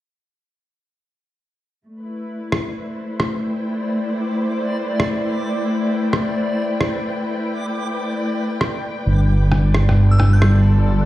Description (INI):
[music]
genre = future garage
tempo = 133 BPM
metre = 4/4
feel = swing 64% on 16ths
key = A minor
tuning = A4 = 441 Hz
[part]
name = muted studio string section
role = sustained chords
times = 1.8-11.1 s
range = G3 to G5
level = -22 LUFS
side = left 1 dB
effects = none
[part]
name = backwards swelling texture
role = texture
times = 2.9-11.1 s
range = D5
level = -29 LUFS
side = right 1 dB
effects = built-in reverb
[part]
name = electronic rim click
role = drums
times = 2.5-10.5 s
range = none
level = -22 LUFS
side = equal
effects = none
[part]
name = dark detuned saw bass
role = bass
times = 9.1-11.1 s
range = G1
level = -13 LUFS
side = equal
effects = none
[part]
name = glassy synth bell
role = melody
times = 10.1-10.6 s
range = E6 to G6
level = -28 LUFS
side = left 1 dB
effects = chorus, analog delay
[sound]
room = digital ambience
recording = played on a big sound system in a bare room, stone room reverb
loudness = -17 LUFS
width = side -15 dB against mid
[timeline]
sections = 1.8-11.1 A section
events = none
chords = 1.8 Am9; 9.1 G9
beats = | 1.85 2.30 2.75 3.20 | 3.65 4.10 4.55 5.00 | 5.46 5.91 6.36 6.81 | 7.26 7.71 8.16 8.61 | 9.06 9.52 9.97 10.42 | 10.87